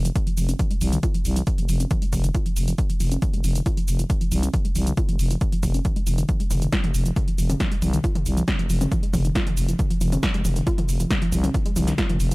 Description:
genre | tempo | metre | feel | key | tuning
driving peak-time techno | 137 BPM | 4/4 | straight | F minor | A4 = 436 Hz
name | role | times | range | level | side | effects
growling FM bass | bass | 0.0-12.3 s | F1 to C2 | -23 LUFS | equal | sidechain pumping
warbly dusty pluck | riff | 0.1-12.3 s | Eb3 to F4 | -28 LUFS | equal | chorus, sidechain pumping, tape echo
punchy analog drum machine | drums | 0.1-12.3 s | hi-hat, shaker, snare drum, toms | -29 LUFS | equal | overdrive, sidechain pumping on hats, sidechain pumping on perc, sidechain pumping on toms
electronic kick drum | drums | 0.2-12.1 s | none | -23 LUFS | equal | overdrive
room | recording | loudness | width
digital ambience | none | -20 LUFS | side -23 dB against mid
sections
0.0-12.3 A section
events
filter sweep on synth arpeggio sound 0.0-12.3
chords
0.0 F5

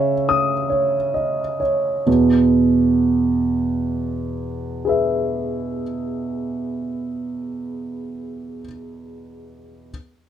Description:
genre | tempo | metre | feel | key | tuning
neoclassical minimalist piano | 43 BPM (dotted quarters) | 6/8 | rubato | E major | A4 = 440 Hz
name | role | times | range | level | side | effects
warm concert grand piano | solo | 0.0-9.9 s | E2 to D#6 | -19 LUFS | right 1 dB | none
room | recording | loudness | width
light reverb | dark, warm production | -18 LUFS | side -10 dB against mid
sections
0.0-2.1 A section; 2.1-7.6 B section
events
slowing down 0.0-2.1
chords
0.0 C#madd9; 2.1 E

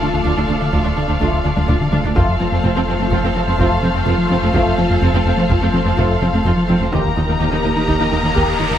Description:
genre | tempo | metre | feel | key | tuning
cinematic, hybrid orchestral and electronic film score | 126 BPM | 5/4 | straight | unclear | A4 = 440 Hz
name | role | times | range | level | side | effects
dark symphonic violin section | second line | 0.0-8.8 s | A4 to Bb5 | -22 LUFS | left 3 dB | none
rich symphonic viola section | accompaniment | 0.0-8.8 s | A3 to G4 | -23 LUFS | right 2 dB | none
phased analog pad | sustained chords | 0.0-8.8 s | Eb3 to Eb5 | -23 LUFS | left 1 dB | phaser, chorus
smooth synth bass | riff | 0.0-8.8 s | D2 to F3 | -19 LUFS | left 1 dB | none
warm sub bass | bass | 0.0-8.8 s | D1 to F1 | -27 LUFS | equal | none
warm symphonic cello section | bass | 0.0-8.8 s | D2 to F2 | -26 LUFS | right 3 dB | none
warm symphonic double bass section | bass | 0.0-8.6 s | F1 to Eb2 | -24 LUFS | right 3 dB | none
taiko ensemble | drums | 0.7-8.8 s | none | -24 LUFS | equal | none
warm French horn section | sustained chords | 1.2-8.5 s | A3 to G4 | -24 LUFS | left 2 dB | none
riser | sound effects | 7.7-8.8 s | none | -28 LUFS | right 2 dB | none
room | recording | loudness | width
moderate scoring stage reverb, RT60 1.6 s | close, detailed microphones | -14 LUFS | side -10 dB against mid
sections
0.0-8.8 A section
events
drum fill 1.6-2.2; riser 7.7-8.8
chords
0.0 Dm; 2.2 F; 6.9 Eb

